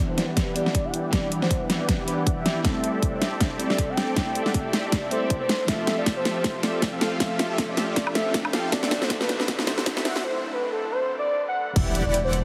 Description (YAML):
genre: future bass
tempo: 158 BPM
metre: 4/4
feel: swing 56% on 16ths, half-time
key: E minor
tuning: A4 = 439 Hz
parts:
  - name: warm velvety synth lead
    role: melody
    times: 0.0-12.4 s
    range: A4 to G5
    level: -32 LUFS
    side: equal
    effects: chorus, sidechain pumping, tape echo
  - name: glassy digital keys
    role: accompaniment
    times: 0.0-11.8 s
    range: E3 to E5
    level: -34 LUFS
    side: equal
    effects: chorus, sidechain pumping
  - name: supersaw chords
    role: riff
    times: 0.0-12.4 s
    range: D3 to G5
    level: -32 LUFS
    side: equal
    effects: subtle chorus, sidechain pumping, low-pass filter
  - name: riser and impact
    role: sound effects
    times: 4.9-12.4 s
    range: none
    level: -40 LUFS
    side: equal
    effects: none
  - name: dubstep drum kit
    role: drums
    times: 0.2-12.4 s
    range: crash cymbal, hi-hat, snare drum, woodblock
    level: -29 LUFS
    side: equal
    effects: none
  - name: electronic kick drum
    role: drums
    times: 0.4-11.8 s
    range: none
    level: -29 LUFS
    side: equal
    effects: none
  - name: saturated sub bass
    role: bass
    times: 11.8-12.4 s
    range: E1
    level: -29 LUFS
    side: equal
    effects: sidechain pumping
room: moderate shimmer reverb, RT60 6.9 s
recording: heavily compressed radio sound, high-pass filter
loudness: -25 LUFS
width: mono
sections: 0.0-11.8 A section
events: build-up 0.0-11.8; drum fill 0.0-10.2; filter sweep on supersaw synth 0.0-11.8; impact 11.8-12.4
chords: 0.0 Em7; 2.6 C6; 5.5 Fmaj7; 8.7 D7; 11.8 Em7